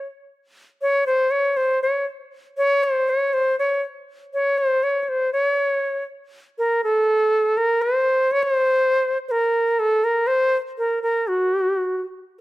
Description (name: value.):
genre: indian classical.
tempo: 120 BPM.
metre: 3/4.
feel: straight.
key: unclear.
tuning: A4 = 439 Hz.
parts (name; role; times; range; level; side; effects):
bright reedy bansuri; solo; 0.0-12.0 s; Gb4 to Db5+23c; -18 LUFS; equal; none.
room: light reverb.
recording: close, detailed microphones.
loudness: -18 LUFS.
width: side -17 dB against mid.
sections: 0.0-5.3 A section; 5.3-12.4 B section.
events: speeding up 0.0-12.4.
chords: none.